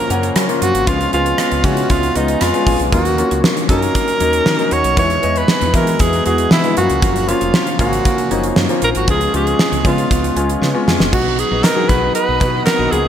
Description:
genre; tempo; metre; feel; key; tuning
1980s-style pop; 117 BPM; 4/4; straight; unclear; A4 = 443 Hz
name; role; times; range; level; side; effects
breathy alto saxophone; melody; 0.0-13.1 s; Eb4 to Db5; -18 LUFS; right 2 dB; ping-pong delay
clear baby grand piano; accompaniment; 0.0-13.1 s; Db3 to Gb5; -19 LUFS; left 5 dB; none
direct-recorded clean electric guitar; riff; 0.0-13.1 s; E3 to Ab4; -24 LUFS; right 6 dB; wide subtle chorus, ping-pong delay
woody fretless electric bass; bass; 0.1-13.1 s; F1 to Gb3; -21 LUFS; equal; analog chorus
gated 80s drum kit; drums; 0.1-13.0 s; crash cymbal, hi-hat, kick drum, rim click, snare drum; -17 LUFS; equal; gated reverb
shimmering ambient pad; sustained chords; 11.8-13.1 s; Bb4 to D#6; -26 LUFS; right 1 dB; chorus, built-in reverb
group handclap; percussion; 11.6-12.8 s; none; -31 LUFS; left 4 dB; none
room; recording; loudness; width
moderate lush hall reverb, RT60 2.3 s; bright 1980s-style digital production; -13 LUFS; side -9 dB against mid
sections
0.0-11.1 A section; 11.1-13.1 B section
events
drum fill 10.6-11.1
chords
0.0 Gbmaj7; 0.9 Db7; 2.9 Ebm7; 5.0 E; 6.8 Gbmaj7; 9.1 Db7; 11.1 B

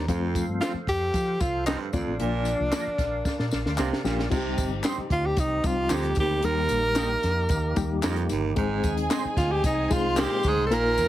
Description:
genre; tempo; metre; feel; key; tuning
uptempo 1960s-style soul; 113 BPM; 4/4; straight; unclear; A4 = 440 Hz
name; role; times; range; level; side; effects
reed electric piano; accompaniment; 0.0-11.1 s; F3 to Bb4; -30 LUFS; left 5 dB; fast tremolo
percussive tonewheel organ; sustained chords; 0.0-11.1 s; F3 to F5; -37 LUFS; right 1 dB; fast rotary speaker, chorus vibrato
breathy baritone saxophone; riff; 0.0-11.1 s; Eb2 to C3; -30 LUFS; right 7 dB; none
vintage muted fingered electric bass; bass; 0.0-11.1 s; G1 to F3; -30 LUFS; equal; none
compact cocktail drum kit; drums; 0.1-11.1 s; crash cymbal, hi-hat, kick drum, snare drum; -30 LUFS; equal; none
tambourine and handclaps; percussion; 0.1-11.1 s; none; -38 LUFS; left 6 dB; none
breathy tenor saxophone; melody; 0.6-11.1 s; D4 to Bb4; -26 LUFS; equal; none
electric guitar at the edge of break-up; stabs; 0.6-10.3 s; Bb3 to C5; -34 LUFS; right 6 dB; ensemble chorus
warm studio violin section; second line; 8.6-11.1 s; Ab4 to C6; -33 LUFS; right 1 dB; none
room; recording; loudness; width
light reverb; heavily compressed radio sound, multiband compression; -23 LUFS; side -13 dB against mid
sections
0.0-4.3 A section; 4.3-11.1 B section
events
drum fill 3.3-4.3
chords
0.1 F; 2.2 Bb; 4.3 Cm; 6.4 Eb; 8.6 Ab

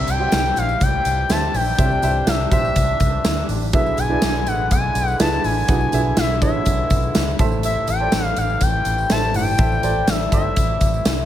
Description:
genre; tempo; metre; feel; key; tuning
1980s-style pop; 123 BPM; 4/4; straight; unclear; A4 = 441 Hz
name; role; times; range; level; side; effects
expressive portamento lead; melody; 0.0-11.3 s; E5 to A5; -22 LUFS; left 2 dB; chorus, ping-pong delay
dark grand piano; accompaniment; 0.0-11.3 s; A2 to G5; -25 LUFS; right 4 dB; none
accordion; sustained chords; 0.0-11.3 s; C3 to E4; -31 LUFS; left 4 dB; none
vintage muted fingered electric bass; bass; 0.1-11.2 s; G1 to D2; -23 LUFS; equal; none
big rock drum kit; drums; 0.1-11.2 s; hi-hat, kick drum, snare drum, tambourine; -21 LUFS; equal; gated reverb
tambourine; percussion; 0.1-11.2 s; none; -42 LUFS; left 9 dB; none
room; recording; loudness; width
light reverb; none; -16 LUFS; side -11 dB against mid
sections
0.0-11.3 A section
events
none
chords
0.0 C; 3.7 E7; 7.4 Am

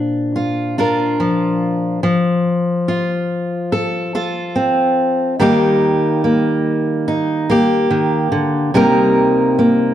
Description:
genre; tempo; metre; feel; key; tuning
folk; 72 BPM; 4/4; straight; Bb major; A4 = 440 Hz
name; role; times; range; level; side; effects
fingerpicked steel-string acoustic guitar; solo; 0.0-9.9 s; Bb2 to Bb4; -14 LUFS; equal; none
room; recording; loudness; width
moderate large studio reverb, RT60 1.3 s; dark, warm production; -14 LUFS; side -11 dB against mid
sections
0.0-9.9 A section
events
none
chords
0.0 Bb; 2.0 F; 5.4 Eb; 8.7 Cm7

